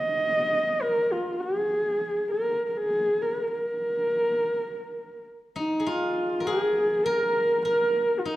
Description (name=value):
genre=mongolian traditional, Mongolian folk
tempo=101 BPM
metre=4/4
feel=straight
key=unclear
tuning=A4 = 444 Hz
part: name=dark horsehead fiddle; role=melody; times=0.0-8.4 s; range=Eb4 to Eb5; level=-24 LUFS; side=equal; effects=none
part: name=steel-string zither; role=second line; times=5.6-8.4 s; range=Eb4 to Bb4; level=-30 LUFS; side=left 2 dB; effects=none
room=wet recital hall reverb, RT60 1.3 s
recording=dark, warm production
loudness=-23 LUFS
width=side -15 dB against mid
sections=0.0-5.9 A section; 5.9-8.4 B section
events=none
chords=none